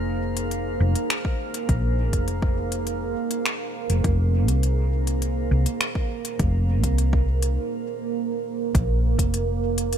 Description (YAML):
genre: ambient dub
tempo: 102 BPM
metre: 4/4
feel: straight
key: unclear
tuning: A4 = 440 Hz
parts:
  - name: deep dark ambient pad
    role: sustained chords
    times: 0.0-10.0 s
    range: Bb3 to C5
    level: -28 LUFS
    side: right 5 dB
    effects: chorus, built-in reverb, vintage 12-bit sampler grit
  - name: hollow-body short-scale fingered electric bass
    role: bass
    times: 0.0-10.0 s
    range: F1 to C2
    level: -22 LUFS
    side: equal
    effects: none
  - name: drifting glass-harmonics texture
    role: texture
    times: 0.0-7.6 s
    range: Bb3 to Bb4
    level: -37 LUFS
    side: left 1 dB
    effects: chorus, built-in reverb
  - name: organic electronic drum kit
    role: drums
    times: 0.4-10.0 s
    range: finger snaps, hi-hat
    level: -29 LUFS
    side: left 2 dB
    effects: none
  - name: electronic kick drum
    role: drums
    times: 1.2-9.3 s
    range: none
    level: -24 LUFS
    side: equal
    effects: overdrive
room: digital ambience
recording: none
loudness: -21 LUFS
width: side -9 dB against mid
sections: 0.0-8.7 A section; 8.7-10.0 B section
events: break 7.6-8.7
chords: 0.0 Fm7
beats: 0.51 1.10 | 1.69 2.28 2.87 3.45 | 4.04 4.63 5.22 5.81 | 6.40 6.98 7.57 8.16 | 8.75 9.34 9.93